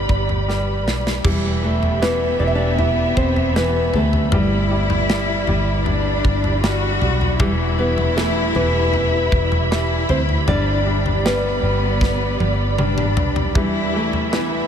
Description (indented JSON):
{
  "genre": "pop ballad",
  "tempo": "78 BPM",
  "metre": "4/4",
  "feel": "straight",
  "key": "unclear",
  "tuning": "A4 = 440 Hz",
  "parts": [
    { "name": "nylon-string guitar", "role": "melody", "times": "0.0-14.7 s", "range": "G3 to E5", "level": "-23 LUFS", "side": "equal", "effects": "analog delay" },
    { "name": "warm studio cello section", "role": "second line", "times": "0.0-14.7 s", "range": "B3 to F#4", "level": "-25 LUFS", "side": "left 3 dB", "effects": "none" },
    { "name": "bright concert grand piano", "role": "accompaniment", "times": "0.0-14.7 s", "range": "E3 to G3", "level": "-27 LUFS", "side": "equal", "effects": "none" },
    { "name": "muted studio string section", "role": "sustained chords", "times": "0.0-14.7 s", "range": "G3 to B5", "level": "-26 LUFS", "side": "right 1 dB", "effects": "none" },
    { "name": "vintage muted fingered electric bass", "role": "bass", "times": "0.0-14.7 s", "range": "E1 to D2", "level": "-22 LUFS", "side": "equal", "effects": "none" },
    { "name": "modern studio drum kit", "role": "drums", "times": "0.1-14.5 s", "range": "crash cymbal, kick drum, snare drum, toms", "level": "-23 LUFS", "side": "equal", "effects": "none" }
  ],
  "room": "moderate huge ambient reverb, RT60 8.8 s",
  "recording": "dreamy mix soaked in reverb",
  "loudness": "-16 LUFS",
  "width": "side -8 dB against mid",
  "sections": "0.0-1.2 A section; 1.2-14.7 A section",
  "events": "drum fill 0.5-1.2, 12.0-13.6",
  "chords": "0.0 G; 1.2 Em; 4.3 G; 7.4 Em; 10.5 G; 13.6 Em"
}